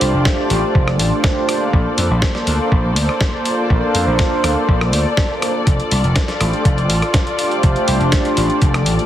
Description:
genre	nu-disco, nu disco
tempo	122 BPM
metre	4/4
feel	straight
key	F major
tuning	A4 = 441 Hz
part	warm analog pad	accompaniment	0.0-9.1 s	A3 to F5	-20 LUFS	equal	chorus, sidechain pumping, digital delay
part	muted studio string section	sustained chords	0.0-9.1 s	Bb3 to D5	-22 LUFS	left 1 dB	sidechain pumping
part	vintage slap bass	bass	0.0-9.0 s	F1 to F2	-18 LUFS	equal	tube saturation
part	dusty soul sampler-style drum kit	drums	0.0-9.1 s	hi-hat, rim click, snare drum	-22 LUFS	equal	none
part	electronic kick drum	drums	0.3-8.7 s	none	-16 LUFS	equal	none
room	light reverb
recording	heavily compressed radio sound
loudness	-14 LUFS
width	side -11 dB against mid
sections	0.0-9.1 A section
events	none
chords	0.0 F69; 1.5 Bbmaj9; 5.7 F69

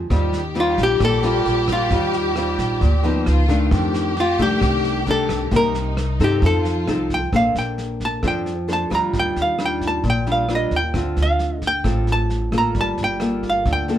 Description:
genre	bossa nova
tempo	133 BPM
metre	4/4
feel	straight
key	Bb major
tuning	A4 = 440 Hz
part	nylon-string guitar	accompaniment	0.0-14.0 s	F2 to C5	-22 LUFS	left 1 dB	none
part	upright bass	bass	0.0-14.0 s	G1 to G2	-23 LUFS	equal	none
part	warm studio violin section	second line	0.1-7.1 s	Eb4 to G4	-25 LUFS	left 1 dB	none
part	vintage brush drum kit	drums	0.1-13.9 s	kick drum, rim click, snare drum	-28 LUFS	right 1 dB	none
part	archtop guitar, miked and amplified	melody	0.6-14.0 s	F4 to Bb5	-21 LUFS	equal	none
room	light reverb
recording	band playing live in one room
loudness	-17 LUFS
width	side -11 dB against mid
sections	0.0-7.3 A section; 7.3-14.0 B section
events	none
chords	0.1 Eb69; 3.3 Db9; 3.7 F13; 5.5 Cm7; 6.4 F7; 7.3 Bbmaj9; 9.1 Ebmaj9; 10.9 Dm7; 12.8 Gm9

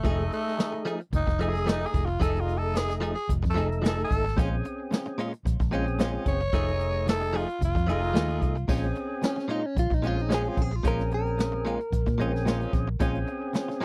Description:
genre	straight-eighth soul blues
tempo	111 BPM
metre	4/4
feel	swing 54% on 16ths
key	Bb minor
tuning	A4 = 438 Hz
part	growling tenor saxophone	second line	0.0-8.7 s	A3 to Db5	-33 LUFS	equal	none
part	percussive tonewheel organ	accompaniment	0.0-13.8 s	A3 to A4	-35 LUFS	equal	slow rotary speaker, overdrive
part	direct-recorded clean electric guitar	stabs	0.0-13.8 s	Bb2 to G#4	-35 LUFS	equal	harmonic tremolo, tape echo
part	vintage muted fingered electric bass	bass	0.0-13.2 s	F1 to Bb2	-31 LUFS	equal	none
part	jazz brush drum kit	drums	0.0-13.8 s	crash cymbal, hi-hat, kick drum, snare drum	-31 LUFS	equal	none
part	direct-recorded clean electric guitar	melody	9.3-12.7 s	Db4 to Bb4	-33 LUFS	equal	none
room	little or no reverb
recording	dry, close 1970s-style studio recording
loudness	-27 LUFS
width	mono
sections	0.0-8.7 A section; 8.7-13.8 A section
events	tenor saxophone solo 0.0-8.7; clean electric guitar solo 8.7-13.8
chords	0.1 F7#9; 4.4 Bbm7; 6.5 F7#9; 8.7 Bbm7

